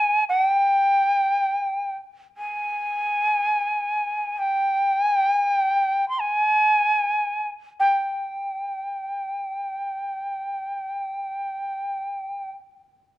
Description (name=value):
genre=japanese traditional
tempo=free time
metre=none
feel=none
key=unclear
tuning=A4 = 441 Hz
part: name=bright reedy shakuhachi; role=solo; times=0.0-12.5 s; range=G5 to C6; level=-21 LUFS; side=equal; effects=none
room=light reverb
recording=close, detailed microphones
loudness=-21 LUFS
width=side -16 dB against mid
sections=0.0-13.2 A section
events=none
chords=none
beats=free time